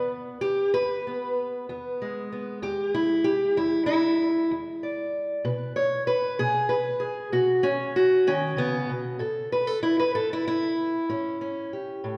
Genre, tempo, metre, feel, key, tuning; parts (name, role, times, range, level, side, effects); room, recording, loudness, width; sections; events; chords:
acoustic country blues, solo or duo; 64 BPM (dotted quarters); 12/8; straight; E mixolydian; A4 = 439 Hz
fingerpicked steel-string acoustic guitar; solo; 0.0-12.2 s; E2 to D5; -26 LUFS; equal
wet scoring stage reverb, RT60 2.0 s; recorded in a church or concert hall; -26 LUFS; mono
0.0-12.2 A section
steel-string acoustic guitar solo 0.0-12.2
0.0 E; 5.4 B5; 9.2 A7